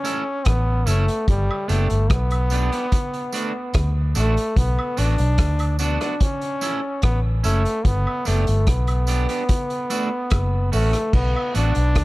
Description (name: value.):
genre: roots reggae.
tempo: 73 BPM.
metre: 4/4.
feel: straight.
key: B minor.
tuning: A4 = 441 Hz.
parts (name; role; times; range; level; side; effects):
brilliant trombone; melody; 0.0-12.0 s; G3 to D4; -25 LUFS; equal; dub echo.
electric guitar at the edge of break-up; accompaniment; 0.0-11.7 s; A3 to A4; -30 LUFS; right 4 dB; dub echo.
tambourine and woodblock; percussion; 0.0-11.7 s; none; -34 LUFS; right 3 dB; none.
vintage drum kit; drums; 0.1-12.0 s; crash cymbal, hi-hat, kick drum, rim click; -23 LUFS; equal; none.
vintage muted fingered electric bass; bass; 0.5-12.0 s; F#1 to D2; -20 LUFS; equal; none.
room: light reverb, small room ambience.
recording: faint mains hum.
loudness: -18 LUFS.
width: side -19 dB against mid.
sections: 0.0-11.1 A section.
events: none.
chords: 0.0 A; 1.3 G; 2.9 D; 4.6 Bm; 6.2 A; 7.8 G; 9.5 D; 10.3 F#m; 11.1 Bm.